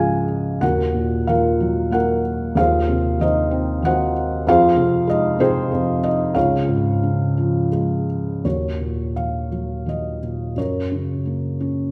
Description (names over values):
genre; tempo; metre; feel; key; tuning
classical, lyrical solo piano; 82-98 BPM; 3/4; rubato; Eb dorian; A4 = 438 Hz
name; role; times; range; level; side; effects
felt-muted upright piano; solo; 0.0-11.9 s; Db2 to Ab5; -20 LUFS; equal; none
room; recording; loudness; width
wet recital hall reverb, RT60 1.4 s; recorded in a church or concert hall; -20 LUFS; mono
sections
0.0-8.4 A section; 8.4-11.9 B section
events
none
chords
0.0 Dbadd9; 0.6 Ebmadd9; 2.6 Ab/Eb; 4.5 Fm7; 6.4 Db; 8.4 Ebm7; 10.6 Gb